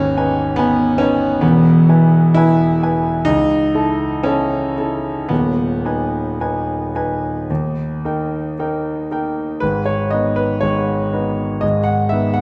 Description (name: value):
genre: classical, romantic nocturne for solo piano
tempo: 54-72 BPM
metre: 4/4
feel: rubato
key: G# minor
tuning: A4 = 436 Hz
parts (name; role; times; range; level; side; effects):
- warm concert grand piano; solo; 0.0-12.4 s; D#1 to A5; -17 LUFS; equal; none
room: wet scoring stage reverb, RT60 1.5 s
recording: none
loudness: -17 LUFS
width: mono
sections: 0.0-9.6 A section; 9.6-12.4 B section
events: none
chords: 0.0 G#m; 1.4 E; 3.3 A/C#; 5.3 G#m/D#; 7.5 D#; 9.6 G#m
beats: 0.58 | 1.43 2.37 3.27 4.25 | 5.30 6.39 7.49 8.57 | 9.61 10.63 11.62